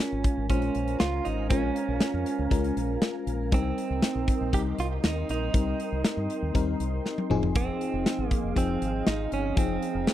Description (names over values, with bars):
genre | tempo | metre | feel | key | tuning
1980s-style pop | 119 BPM | 4/4 | straight | Bb dorian | A4 = 442 Hz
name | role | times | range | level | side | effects
direct-recorded clean electric guitar | melody | 0.0-10.1 s | C4 to G4 | -31 LUFS | right 6 dB | spring reverb, tape echo
FM electric piano | accompaniment | 0.0-10.1 s | F3 to C5 | -31 LUFS | left 6 dB | chorus
soft string machine | sustained chords | 0.0-10.1 s | Ab4 to C6 | -38 LUFS | right 3 dB | ensemble chorus
deep dub fingered electric bass | bass | 0.1-10.0 s | F1 to G2 | -31 LUFS | equal | none
modern studio drum kit | drums | 0.2-10.1 s | hi-hat, kick drum, snare drum, toms | -26 LUFS | equal | none
room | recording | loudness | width
light reverb | dry, close 1970s-style studio recording | -25 LUFS | side -12 dB against mid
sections
0.0-10.1 A section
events
drum fill 7.1-7.6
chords
0.0 Bbm7; 3.5 Cm7; 7.3 Fm7